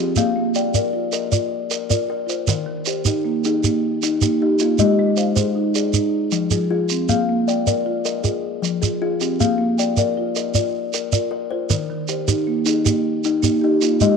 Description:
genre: southern african traditional, mbira-style interlocking cycle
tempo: 104 BPM (dotted quarters)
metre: 12/8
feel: straight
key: Bb mixolydian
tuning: A4 = 440 Hz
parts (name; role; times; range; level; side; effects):
- kalimba; arpeggios; 0.0-14.2 s; Eb3 to F5; -20 LUFS; left 8 dB; none
- marimba with soft mallets; arpeggios; 0.0-14.2 s; Eb3 to G5; -23 LUFS; right 9 dB; slapback echo
- shekere; percussion; 0.2-14.2 s; none; -21 LUFS; right 5 dB; none
room: moderate spring reverb, RT60 2.4 s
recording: 1960s-style stereo with parts hard left and right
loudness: -18 LUFS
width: side -6 dB against mid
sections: 0.2-14.2 A section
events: none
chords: 0.2 Bb; 2.5 Eb; 4.8 Ab; 5.9 Fm; 7.1 Bb; 8.2 Fm; 9.4 Bb; 11.7 Eb

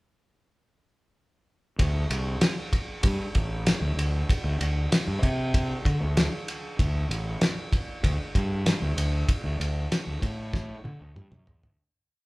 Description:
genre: psychedelic rock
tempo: 96 BPM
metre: 4/4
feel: straight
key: unclear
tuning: A4 = 438 Hz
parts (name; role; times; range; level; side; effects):
- fuzz fingered electric bass; bass; 1.8-11.8 s; A1 to D3; -28 LUFS; equal; overdrive
- cloth-damped thuddy drum kit; drums; 1.8-11.8 s; kick drum, ride cymbal, snare drum, toms; -26 LUFS; equal; none
room: light reverb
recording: band playing live in one room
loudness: -24 LUFS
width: side -23 dB against mid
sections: 1.8-11.8 groove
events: fade-out 9.3-11.8; drum fill 10.5-11.8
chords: none

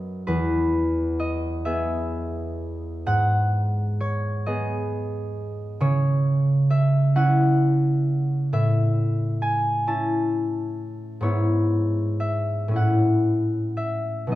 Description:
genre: classical, solo harp piece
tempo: 35-45 BPM (dotted quarters)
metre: 6/8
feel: rubato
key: unclear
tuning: A4 = 440 Hz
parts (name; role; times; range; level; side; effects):
- concert harp; solo; 0.0-14.4 s; E2 to A5; -21 LUFS; equal; none
room: wet recital hall reverb, RT60 1.6 s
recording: dark, warm production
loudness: -21 LUFS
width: side -15 dB against mid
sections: 0.0-14.4 A section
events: none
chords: 0.3 E; 3.1 G#m; 5.8 C#m; 8.5 A; 11.2 E/G#; 12.7 A

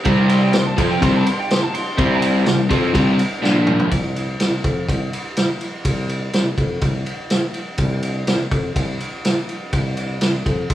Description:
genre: blues rock power trio and southern rock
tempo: 124 BPM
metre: 4/4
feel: straight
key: unclear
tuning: A4 = 441 Hz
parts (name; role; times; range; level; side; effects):
- vintage drum kit; drums; 0.0-10.7 s; kick drum, ride cymbal, snare drum, toms; -19 LUFS; equal; none
- crunchy overdriven guitar; riff; 0.1-3.9 s; Bb2 to F4; -17 LUFS; left 1 dB; none
- warm tuba; bass; 0.1-10.7 s; Bb1 to F2; -24 LUFS; equal; none
- bluesy overdriven lead guitar; second line; 0.3-2.2 s; G5 to C6; -26 LUFS; right 2 dB; distortion
room: moderate stone room reverb, RT60 1.2 s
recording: band playing live in one room, small room ambience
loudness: -17 LUFS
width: side -13 dB against mid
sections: 0.0-3.9 A section; 3.9-10.7 B section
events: lead electric guitar solo 0.0-3.9; drum fill 3.4-3.9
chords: 0.0 C5; 3.4 Bb5; 3.9 Csus4

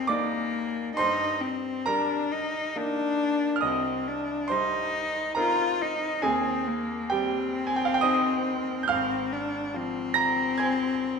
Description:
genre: classical, romantic duo for cello and grand piano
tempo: 69 BPM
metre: 3/4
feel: rubato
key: unclear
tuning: A4 = 440 Hz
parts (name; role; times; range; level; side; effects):
- rich cello; melody; 0.0-11.2 s; Bb3 to F4; -28 LUFS; left 4 dB; none
- bright concert grand piano; accompaniment; 0.0-11.2 s; Ab1 to Bb6; -27 LUFS; right 3 dB; none
room: wet recital hall reverb, RT60 1.4 s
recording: none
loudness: -24 LUFS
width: side -5 dB against mid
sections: 0.0-11.2 A section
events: none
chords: 0.0 Eb; 1.0 Eb/G; 3.6 Cm; 6.2 Cm/Eb; 8.9 Fm/Ab

